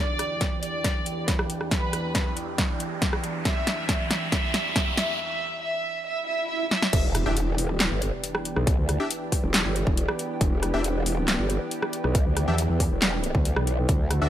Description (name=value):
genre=heavy wobble dubstep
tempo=138 BPM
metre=4/4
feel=half-time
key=E minor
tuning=A4 = 439 Hz
part: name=warm studio violin section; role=melody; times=0.0-6.9 s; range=B4 to E5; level=-30 LUFS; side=right 1 dB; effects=vintage 12-bit sampler grit, tape echo
part: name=lush unison pad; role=sustained chords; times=0.0-14.3 s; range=E2 to G4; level=-33 LUFS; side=right 1 dB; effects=chorus, sidechain pumping
part: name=riser, swell and impact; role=sound effects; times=0.1-8.7 s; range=none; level=-34 LUFS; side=equal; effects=none
part: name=big-room dance drum kit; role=drums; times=0.2-14.2 s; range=crash cymbal, handclaps, hi-hat, rim click, snare drum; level=-27 LUFS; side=equal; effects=none
part: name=electronic kick drum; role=drums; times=0.4-14.0 s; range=none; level=-25 LUFS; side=equal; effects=overdrive
part: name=growl bass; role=bass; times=6.9-14.3 s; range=E1 to E2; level=-25 LUFS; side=equal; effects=chorus, overdrive
part: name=supersaw stab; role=stabs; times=7.3-14.3 s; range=D4 to E5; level=-31 LUFS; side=left 2 dB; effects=cassette tape, tape echo
room=light reverb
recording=none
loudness=-23 LUFS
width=side -11 dB against mid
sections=0.0-6.9 A section; 6.9-14.3 B section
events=build-up 0.0-6.9; drum fill 0.0-5.2, 6.7; riser 0.1-5.2; break 5.2-6.9; swell 6.2-6.9; drop 6.9-14.3; impact 6.9-8.7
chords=0.0 Em7